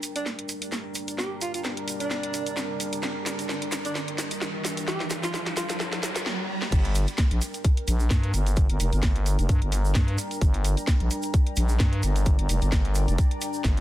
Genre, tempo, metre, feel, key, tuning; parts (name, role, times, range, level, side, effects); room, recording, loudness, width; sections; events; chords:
bass house; 130 BPM; 4/4; swing 55% on 16ths; G minor; A4 = 440 Hz
deep dark ambient pad; sustained chords; 0.1-13.8 s; G3 to D5; -36 LUFS; right 1 dB; chorus, built-in reverb, sidechain pumping
garage drum kit; drums; 0.0-13.8 s; crash cymbal, hi-hat, snare drum; -31 LUFS; equal; high-pass filter on hats, high-pass filter on snare, high-pass filter on cymbals, high-pass filter on room
tube shaker; percussion; 0.0-13.8 s; -38 LUFS; right 4 dB
riser; sound effects; 0.0-6.7 s; -36 LUFS; right 1 dB
warbly tape-like pad; texture; 0.0-13.8 s; D4 to Bb5; -39 LUFS; left 1 dB; chorus, built-in reverb, sidechain pumping
mellow alto saxophone; melody; 0.2-5.8 s; D4 to G4; -34 LUFS; right 1 dB; tape echo
growling FM bass; bass; 6.7-13.8 s; F1 to G2; -24 LUFS; equal; overdrive, sidechain pumping
electronic kick drum; drums; 6.7-13.7 s; -22 LUFS; equal
little or no reverb; dense, heavily limited modern master; -23 LUFS; side -14 dB against mid
0.0-6.7 A section; 6.7-13.8 B section
build-up 0.0-6.7; drum fill 0.0-6.3, 6.3-6.7; riser 0.0-6.7; drop 6.7-13.8
0.0 Gm